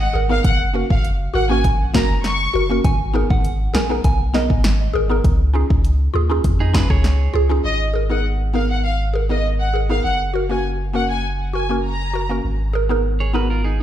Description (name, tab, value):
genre	dancehall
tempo	100 BPM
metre	4/4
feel	straight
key	G# dorian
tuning	A4 = 440 Hz
part	warm studio violin section	melody	0.0-2.7, 7.6-12.3 s	D#5 to C#6	-24 LUFS	left 1 dB	digital delay
part	punchy sub bass	bass	0.0-13.8 s	F#1 to E#2	-20 LUFS	equal	none
part	mallet-like synth pluck	accompaniment	0.1-13.5 s	A#3 to A#4	-23 LUFS	equal	chorus, phaser
part	deep house drum kit	drums	0.4-7.2 s	hi-hat, kick drum, rim click, snare drum	-18 LUFS	equal	none
part	soft synth bell	second line	2.8-5.5 s	D#5 to G#5	-28 LUFS	right 4 dB	chorus, digital delay
part	clean electric guitar	arpeggios	6.6-7.6, 13.2-13.8 s	D#4 to C#5	-26 LUFS	right 6 dB	none
room	light reverb, digital ambience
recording	played on a big sound system in a bare room, stone room reverb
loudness	-16 LUFS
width	side -11 dB against mid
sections	0.0-7.6 A section; 7.6-13.8 B section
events	none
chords	0.4 F#; 2.8 G#madd9; 5.2 C#add9; 7.6 G#madd9; 10.0 F#; 12.4 G#madd9